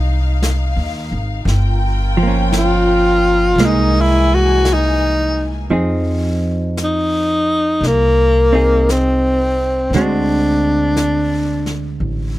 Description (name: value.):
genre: jazz ballad.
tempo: 57 BPM.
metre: 4/4.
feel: swing 67% on 8ths.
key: F minor.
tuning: A4 = 439 Hz.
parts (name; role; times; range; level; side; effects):
hollow-body jazz guitar; accompaniment; 0.0-12.4 s; D3 to Ab4; -20 LUFS; right 3 dB; none.
dark studio string section; sustained chords; 0.0-5.7 s; E3 to G#5; -24 LUFS; left 2 dB; none.
upright bass; bass; 0.0-12.4 s; G1 to F2; -18 LUFS; equal; none.
jazz brush drum kit; drums; 0.4-12.4 s; brushed snare drum, hi-hat, snare drum; -28 LUFS; left 1 dB; none.
breathy tenor saxophone; melody; 2.6-12.0 s; Bb3 to Gb4; -15 LUFS; left 1 dB; none.
room: little or no reverb.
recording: none.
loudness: -13 LUFS.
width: side -16 dB against mid.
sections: 0.0-5.7 A section; 5.7-12.4 B section.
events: tenor saxophone solo 0.0-5.7.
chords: 0.0 Fm7; 1.5 Gm7b5; 3.6 Caug7; 5.7 Fm7; 9.9 D7#11.